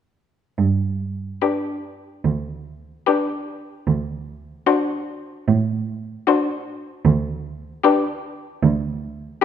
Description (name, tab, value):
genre	classical, slow romantic movement for string quartet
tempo	75 BPM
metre	4/4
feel	rubato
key	G major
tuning	A4 = 440 Hz
part	muted cello	bass	0.6-9.3 s	D2 to A2	-20 LUFS	right 5 dB	none
part	muted violin	melody	1.4-9.4 s	B4 to C5	-24 LUFS	left 11 dB	none
part	muted violin	second line	1.4-9.4 s	F#4 to G4	-23 LUFS	left 8 dB	none
part	muted viola	accompaniment	1.4-9.4 s	D4	-23 LUFS	left 1 dB	none
room	moderate recital hall reverb, RT60 1.7 s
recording	none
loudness	-20 LUFS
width	side -8 dB against mid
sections	0.6-9.4 A section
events	none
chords	0.6 G; 3.9 D7; 7.0 G/D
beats	| 0.58 1.42 2.24 3.06 | 3.86 4.66 5.47 6.27 | 7.04 7.84 8.63 9.42